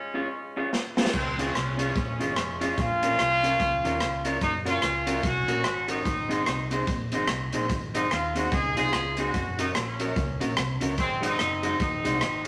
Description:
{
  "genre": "ska",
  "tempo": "146 BPM",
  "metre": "4/4",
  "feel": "swing 60% on 8ths",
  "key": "Db major",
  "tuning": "A4 = 436 Hz",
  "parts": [
    { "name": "clear horn section", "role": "melody", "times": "0.0-12.5 s", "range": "Ab3 to Ab4", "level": "-30 LUFS", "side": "equal", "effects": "none" },
    { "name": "electric guitar through a small old amp", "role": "accompaniment", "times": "0.1-12.2 s", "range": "Ab3 to Db5", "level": "-32 LUFS", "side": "equal", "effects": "spring reverb" },
    { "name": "swinging big-band drum kit", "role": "drums", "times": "0.7-12.5 s", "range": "crash cymbal, hi-hat, kick drum, rim click, snare drum", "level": "-32 LUFS", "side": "equal", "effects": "tape echo" },
    { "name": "fingered electric bass", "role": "bass", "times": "1.1-12.5 s", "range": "F1 to Eb2", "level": "-36 LUFS", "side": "equal", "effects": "none" }
  ],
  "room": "wet studio reverb, RT60 0.6 s",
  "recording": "none",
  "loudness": "-27 LUFS",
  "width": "mono",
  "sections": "0.0-1.1 A section; 1.1-12.5 A section",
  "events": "break 0.0-1.1; drum fill 0.7-1.1",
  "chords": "0.0 Db; 2.8 Bbm; 4.4 Gb; 6.1 Ab; 9.3 Gb; 11.0 Ab7"
}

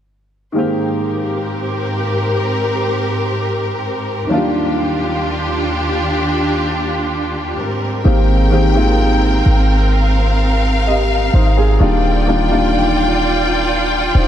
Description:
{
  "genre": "R&B",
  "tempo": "64 BPM",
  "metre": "4/4",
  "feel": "straight",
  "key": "Ab major",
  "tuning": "A4 = 440 Hz",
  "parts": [
    { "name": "warm baby grand piano", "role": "accompaniment", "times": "0.5-14.3 s", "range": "Eb3 to Eb5", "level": "-19 LUFS", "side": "left 1 dB", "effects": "lush chorus" },
    { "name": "warm studio string section", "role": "sustained chords", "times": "0.6-14.3 s", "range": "Eb2 to G5", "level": "-18 LUFS", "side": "equal", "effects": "none" },
    { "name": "warm 808-style bass", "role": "bass", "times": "8.1-14.3 s", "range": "Eb1 to Ab1", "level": "-15 LUFS", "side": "equal", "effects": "none" }
  ],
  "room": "moderate cathedral reverb, RT60 5.6 s",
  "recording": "dreamy mix soaked in reverb",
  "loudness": "-14 LUFS",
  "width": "side -10 dB against mid",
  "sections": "0.6-8.1 A section; 8.1-14.3 B section",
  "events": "none",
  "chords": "0.6 Abmaj9; 4.3 Ebmaj9; 7.6 Abmaj9; 11.8 Ebmaj9"
}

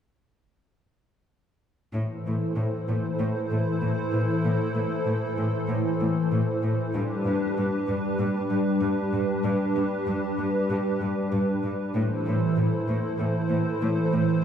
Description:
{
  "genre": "cinematic",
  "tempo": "96 BPM",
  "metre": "4/4",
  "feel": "straight",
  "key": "A minor",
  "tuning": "A4 = 440 Hz",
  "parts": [
    { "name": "hollow soft pad", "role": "sustained chords", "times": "1.9-14.4 s", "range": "E3 to C5", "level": "-25 LUFS", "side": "equal", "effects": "ensemble chorus" },
    { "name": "clear symphonic cello section", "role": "bass", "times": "1.9-14.2 s", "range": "G2 to A2", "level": "-28 LUFS", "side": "equal", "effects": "none" }
  ],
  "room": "wet recital hall reverb, RT60 1.5 s",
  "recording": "heard from further back in the room",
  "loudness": "-24 LUFS",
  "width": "side -8 dB against mid",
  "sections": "1.9-11.9 A section; 11.9-14.4 B section",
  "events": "none",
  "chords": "1.9 Am; 6.9 G; 11.9 Am"
}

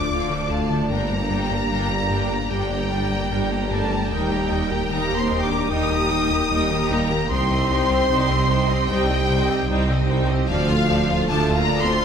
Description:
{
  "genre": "cinematic, hybrid orchestral and electronic film score",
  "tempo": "75 BPM",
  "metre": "4/4",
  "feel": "straight",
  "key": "unclear",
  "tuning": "A4 = 440 Hz",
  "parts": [
    { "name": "clear symphonic violin section", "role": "melody", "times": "0.0-12.0 s", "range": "F5 to Eb6", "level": "-25 LUFS", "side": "left 1 dB", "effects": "none" },
    { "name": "warm symphonic violin section", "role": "second line", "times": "0.0-12.0 s", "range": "F4 to Bb5", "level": "-30 LUFS", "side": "left 1 dB", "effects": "none" },
    { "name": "rich symphonic viola section", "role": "accompaniment", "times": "0.0-12.0 s", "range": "D3 to G4", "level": "-29 LUFS", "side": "right 1 dB", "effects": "none" },
    { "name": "airy breathy pad", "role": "sustained chords", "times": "0.0-12.0 s", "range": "G3 to D5", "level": "-29 LUFS", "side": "equal", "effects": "chorus" },
    { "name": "dark French horn section", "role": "sustained chords", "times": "0.0-12.0 s", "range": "F3 to Eb4", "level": "-27 LUFS", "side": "left 3 dB", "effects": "none" },
    { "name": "pure sine sub bass", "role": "bass", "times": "0.0-12.0 s", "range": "D1 to C2", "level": "-31 LUFS", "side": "equal", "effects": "none" },
    { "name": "round analog bass", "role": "riff", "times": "0.1-12.0 s", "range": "C2 to G3", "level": "-29 LUFS", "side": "left 3 dB", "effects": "none" },
    { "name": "mellow tuba", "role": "bass", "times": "0.1-11.9 s", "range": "G1 to Eb2", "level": "-28 LUFS", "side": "right 4 dB", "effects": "none" },
    { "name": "rich symphonic cello section", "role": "bass", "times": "0.1-12.0 s", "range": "C2 to G2", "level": "-29 LUFS", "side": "right 2 dB", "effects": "none" },
    { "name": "rich symphonic double bass section", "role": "bass", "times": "0.1-12.0 s", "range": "G1 to Eb2", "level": "-29 LUFS", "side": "right 4 dB", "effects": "none" }
  ],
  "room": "moderate scoring stage reverb, RT60 1.8 s",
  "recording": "none",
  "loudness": "-18 LUFS",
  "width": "side -7 dB against mid",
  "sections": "0.0-12.0 A section",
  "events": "none",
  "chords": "0.0 Dm; 0.9 Gm; 4.1 Eb; 7.3 Cm; 10.5 Dm"
}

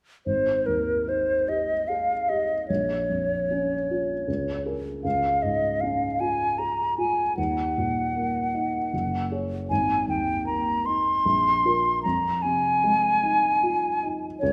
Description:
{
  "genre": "classical, impressionist duo for flute and grand piano",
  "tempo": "76 BPM",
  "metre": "3/4",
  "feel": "rubato",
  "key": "Ab major",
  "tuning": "A4 = 444 Hz",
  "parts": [
    { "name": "hollow concert flute", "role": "melody", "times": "0.3-14.5 s", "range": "Bb4 to C6", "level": "-26 LUFS", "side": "equal", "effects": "none" },
    { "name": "dark baby grand piano", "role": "accompaniment", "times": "0.3-14.5 s", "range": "Gb1 to Db5", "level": "-31 LUFS", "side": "equal", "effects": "none" }
  ],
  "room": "moderate scoring stage reverb, RT60 1.7 s",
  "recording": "none",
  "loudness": "-25 LUFS",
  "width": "mono",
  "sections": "0.3-14.5 A section",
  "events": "none",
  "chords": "0.3 Ab5; 2.7 Bbm; 4.3 Db5; 5.0 Db; 7.4 Ebm; 8.9 Gbsus2; 9.7 Absus2; 11.2 Bb5; 12.0 Fm7"
}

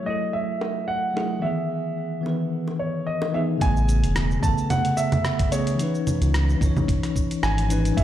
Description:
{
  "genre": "sunset chillout",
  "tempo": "110 BPM",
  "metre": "4/4",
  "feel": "swing 54% on 16ths",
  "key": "unclear",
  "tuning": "A4 = 441 Hz",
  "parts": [
    { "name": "warm concert grand piano", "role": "melody", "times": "0.0-8.0 s", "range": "C#5 to A5", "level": "-28 LUFS", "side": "right 1 dB", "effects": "ping-pong delay" },
    { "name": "bell-like tine electric piano", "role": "accompaniment", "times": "0.0-8.0 s", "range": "C#3 to C#5", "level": "-26 LUFS", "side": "left 1 dB", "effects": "auto-pan, ping-pong delay" },
    { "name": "bongos", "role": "percussion", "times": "0.6-3.3 s", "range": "none", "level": "-34 LUFS", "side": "right 1 dB", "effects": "none" },
    { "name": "round analog bass", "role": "bass", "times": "3.6-8.0 s", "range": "E1 to C#2", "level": "-21 LUFS", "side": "equal", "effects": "none" },
    { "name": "dusty soul sampler-style drum kit", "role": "drums", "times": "3.6-8.0 s", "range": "cabasa, congas, hi-hat, rim click", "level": "-28 LUFS", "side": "right 1 dB", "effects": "none" },
    { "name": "electronic kick drum", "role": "drums", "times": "3.6-8.0 s", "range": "none", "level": "-24 LUFS", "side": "equal", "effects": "none" }
  ],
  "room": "light reverb, digital ambience",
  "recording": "played on a big sound system in a bare room, large studio reverb, low-pass filter",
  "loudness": "-21 LUFS",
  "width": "side -11 dB against mid",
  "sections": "0.0-3.6 A section; 3.6-8.0 B section",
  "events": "filter sweep 0.0-3.6",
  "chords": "0.0 F#m9; 1.4 Emaj7; 3.6 Amaj9; 5.8 C#m9"
}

